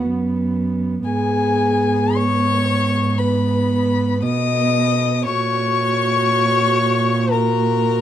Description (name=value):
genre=classical, slow romantic movement for string quartet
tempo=58 BPM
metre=4/4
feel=rubato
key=G# minor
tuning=A4 = 438 Hz
part: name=dark violin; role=second line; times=0.0-8.0 s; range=G#4 to D#5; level=-22 LUFS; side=left 4 dB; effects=none
part: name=dark viola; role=accompaniment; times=0.0-8.0 s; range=B3 to F#4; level=-22 LUFS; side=right 3 dB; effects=none
part: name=warm cello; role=bass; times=0.0-8.0 s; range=F#2 to B2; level=-21 LUFS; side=right 3 dB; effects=none
part: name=dark violin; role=melody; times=1.0-8.0 s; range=G#5 to D#6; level=-22 LUFS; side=left 7 dB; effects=none
room=light reverb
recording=dark, warm production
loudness=-16 LUFS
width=side -10 dB against mid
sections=0.0-8.0 A section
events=none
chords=0.0 B5; 1.1 G#m; 5.3 F#/A#